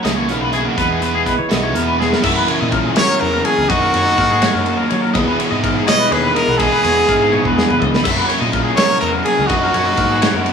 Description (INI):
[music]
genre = math rock and midwest emo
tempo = 83 BPM (dotted quarters)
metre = 6/8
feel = straight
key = unclear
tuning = A4 = 440 Hz
[part]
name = twelve-string electric guitar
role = accompaniment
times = 0.0-3.7 s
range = E2 to G#4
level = -25 LUFS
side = right 5 dB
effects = none
[part]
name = twangy electric guitar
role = arpeggios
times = 0.0-10.5 s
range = F#4 to E5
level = -21 LUFS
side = left 3 dB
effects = harmonic tremolo
[part]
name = biting overdriven guitar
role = riff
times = 0.0-10.5 s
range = C#3 to A#4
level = -19 LUFS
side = equal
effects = none
[part]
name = fuzz fingered electric bass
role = bass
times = 0.0-10.5 s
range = B1 to F#3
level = -22 LUFS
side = equal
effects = overdrive
[part]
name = loose indie drum kit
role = drums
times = 0.0-10.5 s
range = crash cymbal, hi-hat, kick drum, ride cymbal, snare drum, toms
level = -21 LUFS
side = equal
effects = none
[part]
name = bright trumpet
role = melody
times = 3.0-10.5 s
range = F#4 to D#5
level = -16 LUFS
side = equal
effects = none
[sound]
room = moderate large studio reverb, RT60 0.9 s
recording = band playing live in one room, studio ambience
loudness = -13 LUFS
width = side -6 dB against mid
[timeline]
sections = 0.0-2.2 A section; 2.2-10.5 B section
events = drum fill 2.0, 7.3-8.1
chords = 0.0 F#7; 0.8 Emaj7; 2.2 F#7; 3.7 D#m7/F#; 5.2 Emaj7; 8.1 F#7; 9.5 D#m7/F#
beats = 0.05 | 0.78 1.51 | 2.24 2.97 | 3.70 4.42 | 5.15 5.88 | 6.60 7.33 | 8.05 8.78 | 9.50 10.23